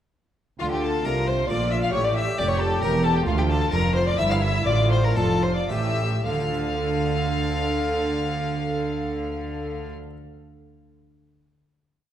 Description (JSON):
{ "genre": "classical, baroque-style concerto movement with solo episodes", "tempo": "104-136 BPM", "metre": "3/4", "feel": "straight", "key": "D minor", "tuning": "A4 = 442 Hz", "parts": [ { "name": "rich chamber violin section", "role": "melody", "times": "0.6-9.9 s", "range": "F5 to F6", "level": "-33 LUFS", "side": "left 6 dB", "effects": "none" }, { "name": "rich violin", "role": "melody", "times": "0.6-9.9 s", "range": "F4 to F5", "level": "-28 LUFS", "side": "left 2 dB", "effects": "none" }, { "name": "rich chamber violin section", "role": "second line", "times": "0.6-9.9 s", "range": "F4 to F5", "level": "-30 LUFS", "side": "left 2 dB", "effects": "none" }, { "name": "harpsichord", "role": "accompaniment", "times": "0.6-10.2 s", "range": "D2 to F5", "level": "-36 LUFS", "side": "equal", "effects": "none" }, { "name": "warm chamber viola section", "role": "accompaniment", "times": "0.6-9.9 s", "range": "E4 to A4", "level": "-30 LUFS", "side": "equal", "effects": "none" }, { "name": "rich chamber cello section", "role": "bass", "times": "0.6-9.9 s", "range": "D2 to D3", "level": "-27 LUFS", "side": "right 2 dB", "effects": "none" }, { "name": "rich chamber double bass section", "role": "bass", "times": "0.6-9.9 s", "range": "E1 to D2", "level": "-28 LUFS", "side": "right 2 dB", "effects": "none" } ], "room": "wet concert hall reverb, RT60 1.8 s", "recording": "dark, warm production", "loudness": "-21 LUFS", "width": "side -10 dB against mid", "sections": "0.6-6.3 ritornello; 6.3-9.7 final chord", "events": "slowing down 2.6-6.3", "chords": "0.6 Dm; 1.9 A7; 3.3 Dm; 4.2 Edim/G; 4.7 Dm/A; 5.7 A7; 6.3 Dm" }